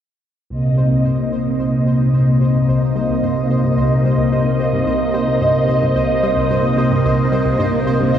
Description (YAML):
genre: ambient, sequencer-driven space music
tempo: 110 BPM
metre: 4/4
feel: straight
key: C minor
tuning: A4 = 440 Hz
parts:
  - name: string machine, full ensemble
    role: sustained chords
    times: 0.5-8.2 s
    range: C3 to Eb5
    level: -14 LUFS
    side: equal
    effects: phaser, ensemble chorus, shimmer reverb
  - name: analog pluck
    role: riff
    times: 0.5-8.2 s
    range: C2 to G3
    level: -26 LUFS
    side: equal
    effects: chorus, tape echo
  - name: pulsing gated texture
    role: texture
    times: 0.8-8.2 s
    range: C5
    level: -25 LUFS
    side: right 1 dB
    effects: chorus, built-in reverb, shimmer reverb
room: wet plate reverb, RT60 2.5 s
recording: dark, warm production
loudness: -14 LUFS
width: side -9 dB against mid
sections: 0.5-8.2 A section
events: fade-in on synth arpeggio sound 0.5-8.2; filter sweep on string machine 0.5-8.2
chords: 0.5 Cm7